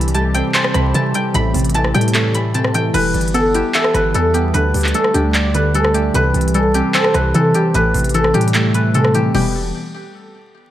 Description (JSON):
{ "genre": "hip hop, trap", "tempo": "150 BPM", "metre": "4/4", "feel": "half-time", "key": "E minor", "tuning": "A4 = 440 Hz", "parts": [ { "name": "guzheng", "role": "melody", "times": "0.0-9.5 s", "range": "G4 to B5", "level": "-18 LUFS", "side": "equal", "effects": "digital delay" }, { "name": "glassy digital keys", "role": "accompaniment", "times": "0.0-9.5 s", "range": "A2 to E5", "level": "-19 LUFS", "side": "equal", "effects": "chorus, phaser" }, { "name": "hollow soft pad", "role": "sustained chords", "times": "0.0-9.5 s", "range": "D3 to G4", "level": "-26 LUFS", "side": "left 1 dB", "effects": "ensemble chorus" }, { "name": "hard-hitting 808-style bass", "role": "bass", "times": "0.0-9.7 s", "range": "E1 to C3", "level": "-19 LUFS", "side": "equal", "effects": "none" }, { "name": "trap drum kit", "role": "drums", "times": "0.0-9.4 s", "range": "crash cymbal, handclaps, hi-hat, rim click", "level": "-21 LUFS", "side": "equal", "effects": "overdrive" } ], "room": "light reverb", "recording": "vinyl crackle", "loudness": "-13 LUFS", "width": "side -12 dB against mid", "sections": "0.0-2.9 A section; 2.9-9.3 B section; 9.3-10.7 C section", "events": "none", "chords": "0.0 C; 1.3 Am7; 2.9 Em; 4.5 Dsus4; 6.1 C; 7.7 Am7; 9.3 Em" }